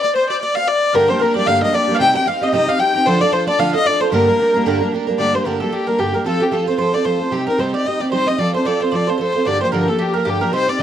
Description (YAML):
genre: celtic folk, Celtic reel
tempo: 225 BPM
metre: 4/4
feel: swing 57% on 8ths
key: G minor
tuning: A4 = 440 Hz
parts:
  - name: warm fiddle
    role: melody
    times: 0.0-10.8 s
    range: G4 to G5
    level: -18 LUFS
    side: left 3 dB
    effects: none
  - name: accordion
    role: second line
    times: 0.0-4.9, 9.5-10.8 s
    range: G4 to G5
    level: -23 LUFS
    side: left 5 dB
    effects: light tremolo tuning
  - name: mandolin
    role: second line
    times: 0.0-10.8 s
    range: G4 to G5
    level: -24 LUFS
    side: right 7 dB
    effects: slapback echo
  - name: picked twelve-string acoustic guitar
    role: accompaniment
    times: 0.9-10.8 s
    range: G2 to Bb4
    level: -18 LUFS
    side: right 3 dB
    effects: none
room: studio ambience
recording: dry, close 1970s-style studio recording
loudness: -14 LUFS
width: side -10 dB against mid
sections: 0.0-5.2 A section; 5.2-10.8 B section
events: none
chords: 0.0 N.C.; 0.9 Gm; 2.0 Cm; 3.1 Dm; 4.1 Gm; 6.3 F; 7.3 Cm; 8.4 F; 9.5 Gm7